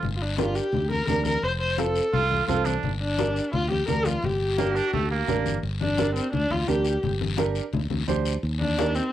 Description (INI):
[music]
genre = latin, cumbia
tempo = 172 BPM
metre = 4/4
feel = straight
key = G minor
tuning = A4 = 439 Hz
[part]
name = clear trumpet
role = second line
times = 0.0-5.6 s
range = A3 to F4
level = -27 LUFS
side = right 7 dB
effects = cassette tape
[part]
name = fingered electric bass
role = bass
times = 0.0-9.0 s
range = F1 to Eb2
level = -28 LUFS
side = equal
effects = none
[part]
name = congas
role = percussion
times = 0.0-9.0 s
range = none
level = -31 LUFS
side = left 6 dB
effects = none
[part]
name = guiro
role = percussion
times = 0.0-9.1 s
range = none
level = -38 LUFS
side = left 9 dB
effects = none
[part]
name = warm viola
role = melody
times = 0.2-9.1 s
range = C4 to C5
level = -27 LUFS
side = left 1 dB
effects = cassette tape
[part]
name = warm upright piano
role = accompaniment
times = 0.4-9.0 s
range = C4 to C5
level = -29 LUFS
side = right 6 dB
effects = cassette tape
[sound]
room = moderate studio reverb, RT60 0.6 s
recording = home recording on cassette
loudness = -22 LUFS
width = side -12 dB against mid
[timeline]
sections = 0.0-5.6 A section; 5.6-9.1 B section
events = viola solo 5.6-9.1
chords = 0.0 Gm; 1.4 F; 2.8 Gm; 8.4 Eb